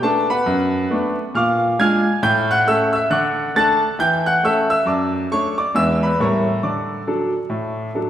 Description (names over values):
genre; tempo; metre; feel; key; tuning
jazz, stride piano; 136 BPM; 4/4; swing 61% on 8ths; D major; A4 = 440 Hz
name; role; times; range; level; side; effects
bright grand piano; solo; 0.0-8.1 s; E2 to A6; -16 LUFS; equal; none
room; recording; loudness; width
wet recital hall reverb, RT60 1.8 s; recorded in a church or concert hall, vinyl crackle; -16 LUFS; side -10 dB against mid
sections
0.0-8.1 A section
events
none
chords
0.0 Bm7; 1.3 Bb7; 2.2 A7; 3.1 D; 4.0 A7/E; 4.9 D/F#; 5.7 E7; 6.2 A7b9; 6.6 D